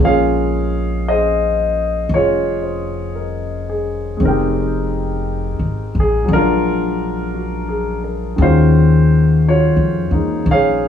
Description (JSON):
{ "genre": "jazz ballad", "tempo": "57 BPM", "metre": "4/4", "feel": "swing 69% on 8ths", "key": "Bb minor", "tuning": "A4 = 440 Hz", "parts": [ { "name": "warm grand piano", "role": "accompaniment", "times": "0.0-10.9 s", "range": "Eb3 to G5", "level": "-17 LUFS", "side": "equal", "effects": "none" }, { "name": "upright bass", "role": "bass", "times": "0.0-10.9 s", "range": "F1 to F2", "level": "-17 LUFS", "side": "left 1 dB", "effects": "none" } ], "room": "moderate studio reverb, RT60 0.6 s", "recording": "band playing live in one room, studio reverb", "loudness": "-14 LUFS", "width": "side -8 dB against mid", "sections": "0.0-10.9 A section", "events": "none", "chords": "0.0 Bbm9; 4.2 Fm9; 6.3 Bb7b13; 8.4 Ebm11" }